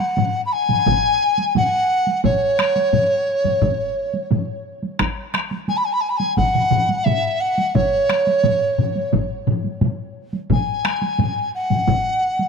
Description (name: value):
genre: japanese traditional, taiko drum ensemble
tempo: 87 BPM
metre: 4/4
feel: straight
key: F# suspended pentatonic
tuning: A4 = 440 Hz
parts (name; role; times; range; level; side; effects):
- mellow hollow large dizi; melody; 0.0-12.5 s; C#5 to B5; -19 LUFS; equal; none
- solo taiko drums; percussion; 0.0-12.5 s; none; -26 LUFS; right 4 dB; none
- taiko ensemble; percussion; 0.2-12.0 s; none; -24 LUFS; left 6 dB; none
- taiko ensemble; percussion; 0.2-12.0 s; none; -23 LUFS; right 5 dB; none
- taiko ensemble; percussion; 0.9-12.0 s; none; -26 LUFS; left 1 dB; none
room: moderate huge ambient reverb, RT60 3.7 s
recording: none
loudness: -17 LUFS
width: side -5 dB against mid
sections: 0.0-12.5 A section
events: none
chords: none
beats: 0.17 0.86 1.55 | 2.24 2.93 3.62 4.31 | 5.00 5.68 6.37 7.06 | 7.75 8.44 9.12 9.81 | 10.50 11.19 11.87